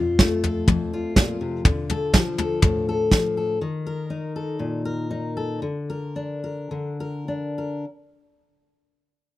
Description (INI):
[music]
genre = indie folk with a building arrangement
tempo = 98-124 BPM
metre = 4/4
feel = straight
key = Bb major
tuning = A4 = 438 Hz
[part]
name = fingerpicked steel-string acoustic guitar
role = accompaniment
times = 0.0-7.8 s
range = F2 to Bb4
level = -25 LUFS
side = left 3 dB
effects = none
[part]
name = upright bass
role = bass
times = 0.0-1.6 s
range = F2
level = -35 LUFS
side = equal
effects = none
[part]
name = soft brush drum kit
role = drums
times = 0.2-3.2 s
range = kick drum, snare drum, toms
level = -18 LUFS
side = equal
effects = none
[sound]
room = small room ambience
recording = dry, close 1970s-style studio recording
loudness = -22 LUFS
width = side -15 dB against mid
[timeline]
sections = 0.0-7.9 A section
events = slowing down 3.6-7.9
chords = 0.0 F; 1.7 Dm; 3.6 Eb5; 5.6 Bb/D